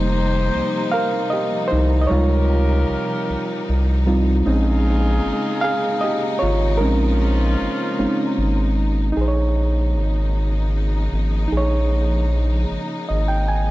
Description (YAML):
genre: slow six-eight R&B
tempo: 51 BPM (dotted quarters)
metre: 6/8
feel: straight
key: unclear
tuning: A4 = 440 Hz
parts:
  - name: reed electric piano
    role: accompaniment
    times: 0.0-13.7 s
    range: C3 to Ab5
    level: -22 LUFS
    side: right 1 dB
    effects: none
  - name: warm symphonic string section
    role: sustained chords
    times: 0.0-13.7 s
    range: C3 to Eb4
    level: -29 LUFS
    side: left 1 dB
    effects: none
  - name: warm horn section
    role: stabs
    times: 0.0-8.7 s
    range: F3 to C5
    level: -27 LUFS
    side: left 2 dB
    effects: analog delay
  - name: round analog bass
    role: bass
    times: 0.0-13.7 s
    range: F1 to Db2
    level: -18 LUFS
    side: equal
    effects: none
room: studio ambience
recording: dry, gritty hardware recording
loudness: -17 LUFS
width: side -17 dB against mid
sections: 0.0-9.2 A section; 9.2-13.7 B section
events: reed electric piano solo 0.0-9.2; reed electric piano fill 12.7-13.7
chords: 0.0 F9sus4; 2.1 Dbmaj9#11; 4.5 Bbm11